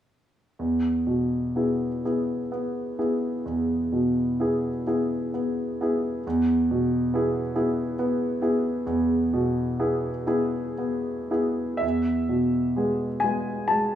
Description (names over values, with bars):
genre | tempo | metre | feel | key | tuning
classical, romantic nocturne for solo piano | 37-46 BPM (dotted quarters) | 12/8 | rubato | E major | A4 = 440 Hz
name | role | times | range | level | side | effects
clear concert grand piano | solo | 0.6-14.0 s | E2 to A5 | -23 LUFS | equal | none
room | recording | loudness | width
moderate large studio reverb, RT60 0.9 s | small room ambience | -23 LUFS | side -10 dB against mid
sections
0.6-11.8 A section; 11.8-14.0 B section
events
none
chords
0.6 E